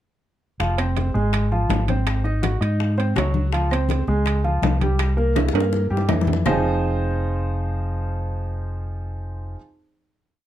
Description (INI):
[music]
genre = latin, salsa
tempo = 164 BPM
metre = 4/4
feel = straight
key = F minor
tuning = A4 = 440 Hz
[part]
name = clear grand piano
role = accompaniment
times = 0.6-9.6 s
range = E3 to Gb5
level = -25 LUFS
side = right 2 dB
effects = none
[part]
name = fingered electric bass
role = bass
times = 0.6-9.5 s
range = F1 to Ab2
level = -22 LUFS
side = equal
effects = none
[part]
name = bongos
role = percussion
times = 0.6-6.5 s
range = none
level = -30 LUFS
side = left 7 dB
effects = none
[part]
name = congas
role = percussion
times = 0.6-6.5 s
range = none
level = -29 LUFS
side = left 4 dB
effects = none
[part]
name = timbales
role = percussion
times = 0.6-6.5 s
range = none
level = -28 LUFS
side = right 9 dB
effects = none
[part]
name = claves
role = percussion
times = 0.8-6.5 s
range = none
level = -35 LUFS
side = left 4 dB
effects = none
[sound]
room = light reverb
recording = dark, warm production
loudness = -19 LUFS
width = side -12 dB against mid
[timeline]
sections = 0.6-6.5 verse; 6.5-9.4 final chord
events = drum fill 5.4-6.5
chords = 0.6 Fm; 2.1 Ab7; 3.5 Dbmaj7; 5.0 C7; 6.5 Fm7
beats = | 0.60 0.97 1.33 1.70 | 2.07 2.43 2.80 3.17 | 3.53 3.90 4.26 4.63 | 5.00 5.36 5.73 6.10 | 6.46 6.83 7.19 7.56 | 7.92 8.29 8.65 9.02